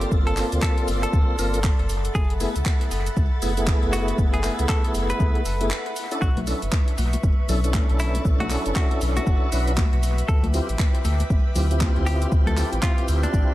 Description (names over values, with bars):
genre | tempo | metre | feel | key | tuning
deep house | 118 BPM | 4/4 | swing 60% on 16ths | B minor | A4 = 439 Hz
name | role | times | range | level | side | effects
direct-recorded clean electric guitar | melody | 0.0-13.5 s | D4 to B4 | -32 LUFS | equal | analog delay
warm analog pad | sustained chords | 0.0-13.5 s | D5 to D6 | -36 LUFS | equal | chorus, vintage 12-bit sampler grit, sidechain pumping
tonewheel organ | stabs | 0.0-13.5 s | A3 to B4 | -28 LUFS | equal | overdrive, chorus vibrato, slow rotary speaker, sidechain pumping, analog delay
sub bass with octave | bass | 0.0-13.4 s | F#1 to D2 | -24 LUFS | equal | tube saturation, sidechain pumping
deep house drum kit | drums | 0.0-13.5 s | handclaps, hi-hat, shaker | -32 LUFS | equal | overdrive, analog delay
string machine, violins | texture | 0.0-13.5 s | A4 to A6 | -36 LUFS | left 1 dB | ensemble chorus
electronic kick drum | drums | 0.1-13.5 s | none | -21 LUFS | equal | overdrive
congas | percussion | 6.4-13.3 s | none | -33 LUFS | left 2 dB | analog delay
room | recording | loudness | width
digital ambience | echo-heavy mix, lossy compression artefacts | -20 LUFS | side -16 dB against mid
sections
0.0-13.5 A section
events
break 5.7-6.2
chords
0.0 Gm11; 1.9 F#m11; 6.2 Bm11; 10.3 Dm11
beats
| 0.12 0.62 1.13 1.64 | 2.15 2.66 3.17 3.67 | 4.18 4.69 5.20 5.71 | 6.22 6.73 7.24 7.74 | 8.25 8.76 9.27 9.78 | 10.29 10.79 11.30 11.81 | 12.32 12.83 13.34